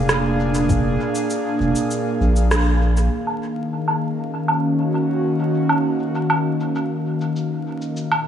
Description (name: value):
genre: ambient dub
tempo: 99 BPM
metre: 4/4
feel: straight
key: Eb minor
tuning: A4 = 440 Hz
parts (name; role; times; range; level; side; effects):
- airy breathy pad; sustained chords; 0.0-8.3 s; Bb2 to F5; -20 LUFS; equal; chorus
- round analog bass; bass; 0.0-3.1 s; F1 to Bb1; -19 LUFS; equal; none
- electronic rim click, cabasa and woodblock; drums; 0.1-8.2 s; none; -24 LUFS; right 1 dB; low-pass filter on perc, low-pass filter on snare, low-pass filter on room, dub echo
- electronic kick drum; drums; 0.7-0.8 s; none; -20 LUFS; left 1 dB; none
room: moderate echo chamber reverb, RT60 1.9 s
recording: vinyl crackle, studio reverb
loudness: -18 LUFS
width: side -9 dB against mid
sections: 0.0-3.1 A section; 3.1-8.3 B section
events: kick drops out 1.9-3.1; band accent 2.5-2.8; filter sweep on drum 3.1-8.3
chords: 0.0 Bb7; 3.1 Ebm9